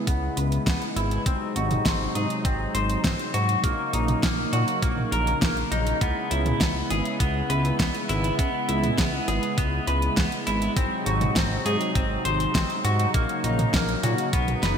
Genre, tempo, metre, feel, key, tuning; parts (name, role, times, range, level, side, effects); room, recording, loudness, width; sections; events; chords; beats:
synthwave; 101 BPM; 4/4; straight; C# dorian; A4 = 440 Hz
brassy analog pad; sustained chords; 0.0-14.8 s; B#2 to E4; -29 LUFS; equal; chorus, sidechain pumping
semi-hollow electric guitar; arpeggios; 0.0-14.8 s; A#3 to B#4; -27 LUFS; left 1 dB; wide subtle chorus, low-pass filter, ping-pong delay
chorused synth bass; bass; 0.1-14.8 s; F#1 to A#2; -27 LUFS; equal; sidechain pumping
electronic kick drum; drums; 0.1-14.4 s; -26 LUFS; equal
pop drum kit; drums; 0.1-14.7 s; hi-hat, snare drum, toms; -28 LUFS; right 1 dB; gated reverb
moderate lush hall reverb, RT60 2.8 s; bright 1980s-style digital production; -22 LUFS; side -7 dB against mid
0.0-14.8 A section
0.0 C#m7; 1.3 G#7; 3.6 F#6/A#; 6.0 C#m7; 10.8 G#7; 13.1 F#6/A#
0.07 0.67 | 1.26 1.85 2.45 3.04 | 3.64 4.23 4.83 5.42 | 6.01 6.61 7.20 7.80 | 8.39 8.98 9.58 10.17 | 10.77 11.36 11.95 12.55 | 13.14 13.74 14.33